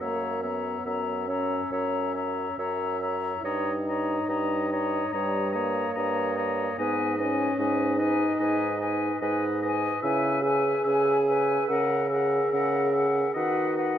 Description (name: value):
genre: classical, slow romantic movement for wind quintet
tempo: 72 BPM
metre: 4/4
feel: rubato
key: unclear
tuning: A4 = 440 Hz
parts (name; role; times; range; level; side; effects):
- silver concert flute; melody; 0.0-14.0 s; F#5 to A#5; -32 LUFS; left 8 dB; none
- warm oboe; second line; 0.0-14.0 s; D#5 to E5; -33 LUFS; left 3 dB; none
- warm French horn; accompaniment; 0.0-14.0 s; G3 to A#4; -29 LUFS; equal; none
- warm clarinet; accompaniment; 0.0-14.0 s; A#4 to C#5; -34 LUFS; right 8 dB; none
- mellow bassoon; bass; 0.0-14.0 s; F#2 to D#3; -29 LUFS; right 2 dB; none
room: moderate scoring stage reverb, RT60 1.6 s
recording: none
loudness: -24 LUFS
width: side -10 dB against mid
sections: 0.0-14.0 A section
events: none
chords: 0.0 F#7; 3.4 D#7/G; 6.8 G#m; 10.0 C#m7; 11.7 F#7/C#; 13.4 B/D#